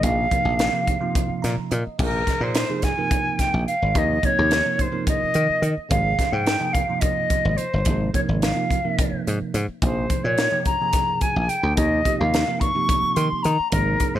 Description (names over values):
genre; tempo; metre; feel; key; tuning
electric jazz fusion; 215 BPM (eighths); 7/8; straight; Bb dorian; A4 = 440 Hz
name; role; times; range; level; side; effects
silver concert flute; melody; 0.0-14.2 s; Bb4 to Db6; -23 LUFS; equal; none
bell-like tine electric piano; accompaniment; 0.0-14.2 s; C3 to Bb5; -28 LUFS; right 5 dB; phaser
dry thumbed slap bass; bass; 0.0-14.2 s; G1 to Eb3; -22 LUFS; left 1 dB; none
crisp fusion drum kit; drums; 0.0-14.1 s; crash cymbal, hi-hat, kick drum, snare drum; -25 LUFS; equal; none
room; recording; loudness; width
light reverb, studio ambience; none; -19 LUFS; side -12 dB against mid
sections
0.0-2.0 A section; 2.0-14.2 A section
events
tine electric piano fill 1.1-2.0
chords
0.0 Bbsus2; 2.0 Bb5; 3.9 Eb7sus2; 5.9 Abmaj9; 7.9 Ab69; 9.8 Bb5; 11.8 Eb13